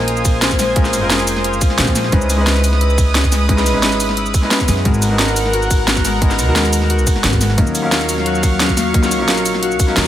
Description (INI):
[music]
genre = liquid drum and bass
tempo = 176 BPM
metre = 4/4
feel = straight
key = unclear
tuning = A4 = 438 Hz
[part]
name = warm grand piano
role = accompaniment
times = 0.0-10.1 s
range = Gb3 to F5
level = -21 LUFS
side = equal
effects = tape echo
[part]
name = lush unison pad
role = sustained chords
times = 0.0-10.1 s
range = Gb3 to Eb6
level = -21 LUFS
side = equal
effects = chorus, sidechain pumping
[part]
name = Celtic harp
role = arpeggios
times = 0.0-10.1 s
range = Ab3 to Ab4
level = -22 LUFS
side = left 5 dB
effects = vintage 12-bit sampler grit, tape echo
[part]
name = upright bass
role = bass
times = 0.0-10.1 s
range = F1 to Gb2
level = -19 LUFS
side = right 1 dB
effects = none
[part]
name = drum and bass drum kit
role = drums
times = 0.0-10.1 s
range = hi-hat, ride cymbal, shaker, snare drum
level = -18 LUFS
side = equal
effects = overdrive
[part]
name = electronic kick drum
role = drums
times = 0.3-9.9 s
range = none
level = -16 LUFS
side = right 1 dB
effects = none
[sound]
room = light reverb, digital ambience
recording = none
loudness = -12 LUFS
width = side -12 dB against mid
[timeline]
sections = 0.0-10.1 A section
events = none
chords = 0.0 Bbm9; 2.1 Dbm9; 4.9 Abm9; 7.6 Ebm9